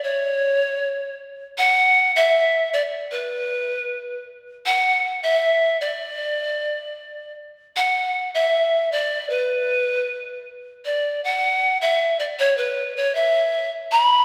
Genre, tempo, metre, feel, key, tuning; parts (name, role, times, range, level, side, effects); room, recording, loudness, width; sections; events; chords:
andean folk; 78 BPM; 2/4; straight; B minor; A4 = 440 Hz
breathy pan flute; solo; 0.0-14.2 s; B4 to B5; -21 LUFS; equal
wet concert hall reverb, RT60 2.2 s; heard from further back in the room; -21 LUFS; mono
0.0-7.8 A section; 7.8-14.2 A section